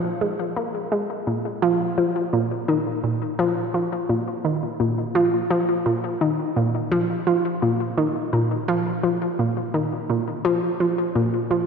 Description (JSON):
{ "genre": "ambient", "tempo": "85 BPM", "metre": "4/4", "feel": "straight", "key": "unclear", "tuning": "A4 = 440 Hz", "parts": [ { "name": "analog pluck", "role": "solo", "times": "0.0-11.7 s", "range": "Bb2 to Bb3", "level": "-20 LUFS", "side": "equal", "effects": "chorus, ping-pong delay" } ], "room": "wet lush hall reverb, RT60 3.3 s", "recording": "dreamy mix soaked in reverb", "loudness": "-20 LUFS", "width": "side -6 dB against mid", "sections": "0.0-11.7 A section", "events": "none", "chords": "none" }